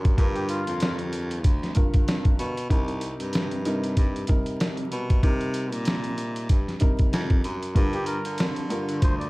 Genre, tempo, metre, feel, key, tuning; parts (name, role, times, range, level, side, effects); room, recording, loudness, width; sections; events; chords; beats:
hip hop, boom-bap hip-hop; 95 BPM; 4/4; swing 57% on 16ths; A4 = 440 Hz
warm upright piano; accompaniment; 0.0-9.3 s; G2 to Bb4; -30 LUFS; equal; cassette tape, high-pass filter, low-pass filter
breathy baritone saxophone; bass; 0.0-9.3 s; C2 to D3; -30 LUFS; equal
boom bap sampler-style drum kit; drums; 0.0-9.3 s; hi-hat, kick drum, snare drum; -23 LUFS; equal
trumpet with cup mute; melody; 0.4-1.0, 7.9-9.3 s; F4 to D5; -32 LUFS; left 1 dB; high-pass filter, low-pass filter, slapback echo
little or no reverb; dark, warm production, vinyl crackle; -22 LUFS; side -23 dB against mid
0.0-9.3 A section
0.0 Gm7; 2.7 Cm7; 7.8 Gm7
| 0.18 0.81 1.44 2.07 | 2.71 3.34 3.97 4.60 | 5.23 5.86 6.50 7.13 | 7.76 8.39 9.02